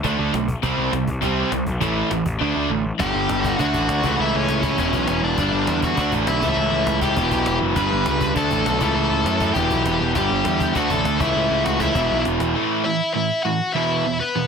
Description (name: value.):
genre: punk rock.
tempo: 201 BPM.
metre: 4/4.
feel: straight.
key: E dorian from 3.0 s.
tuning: A4 = 437 Hz.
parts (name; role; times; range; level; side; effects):
overdriven electric guitar; riff; 0.0-14.5 s; E2 to D4; -23 LUFS; right 13 dB; none.
raw garage guitar; riff; 0.0-14.5 s; E2 to D4; -25 LUFS; left 15 dB; overdrive.
fuzz picked electric bass; bass; 0.0-12.5 s; E1 to F#2; -24 LUFS; left 1 dB; overdrive.
cajon; drums; 0.0-12.5 s; none; -30 LUFS; left 1 dB; none.
smooth overdriven lead guitar; melody; 3.0-14.5 s; B3 to B5; -23 LUFS; left 2 dB; none.
room: light reverb.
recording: dense, heavily limited modern master.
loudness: -18 LUFS.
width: side -6 dB against mid.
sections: 0.0-3.0 A section; 3.0-12.6 B section; 12.6-14.5 C section.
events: kick and snare drop out 2.4-3.0; drum fill 12.0-12.6; half time 12.6-14.5.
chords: 0.0 D5; 0.6 C5; 1.8 A5; 2.4 D5; 3.0 G5; 3.6 D; 4.0 A/C#; 4.8 E5; 5.4 G5; 6.0 D; 6.4 A/C#; 7.2 Em; 7.8 G; 8.4 D5; 8.8 A/C#; 9.6 Em; 10.2 G5; 10.8 D; 11.2 A/C#; 12.0 E5; 12.6 A5; 13.8 E5.